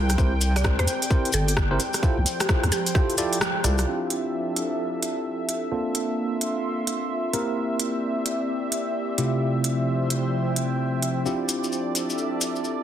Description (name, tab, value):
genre	UK garage, two-step garage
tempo	130 BPM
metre	4/4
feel	swing 63% on 16ths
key	D minor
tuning	A4 = 441 Hz
part	warm analog pad	sustained chords	0.0-12.8 s	D5 to G5	-33 LUFS	equal	chorus, tremolo, sidechain pumping
part	deep soft wobble bass	bass	0.0-3.9 s	G1 to E2	-23 LUFS	equal	chorus, tube saturation, sidechain pumping
part	airy breathy pad	texture	0.0-12.8 s	F3 to C6	-32 LUFS	equal	chorus, sidechain pumping
part	garage drum kit	drums	0.1-12.5 s	hi-hat, rim click	-27 LUFS	right 1 dB	soft clipping on snare
part	cabasa	percussion	0.1-3.9, 11.3-12.8 s	none	-32 LUFS	left 5 dB	none
part	tine electric piano	stabs	0.2-12.8 s	C3 to D5	-27 LUFS	equal	medium stereo tremolo, low-pass filter, dub echo
part	electronic kick drum	drums	0.2-3.1 s	none	-23 LUFS	equal	none
part	mallet-like synth pluck	melody	0.6-3.6 s	G4 to D5	-31 LUFS	right 2 dB	chorus, dub echo
room	light reverb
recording	dense, heavily limited modern master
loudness	-22 LUFS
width	side -10 dB against mid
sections	0.0-3.9 A section; 3.9-12.8 B section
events	kick drops out 3.4-3.9; band accent 3.4; filter sweep on tine electric piano 3.9-12.8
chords	0.0 C7; 1.8 Fmaj9/C; 3.9 Dm11; 5.7 Bbmaj9; 7.3 C7; 9.2 Fmaj9/C; 11.3 Dm11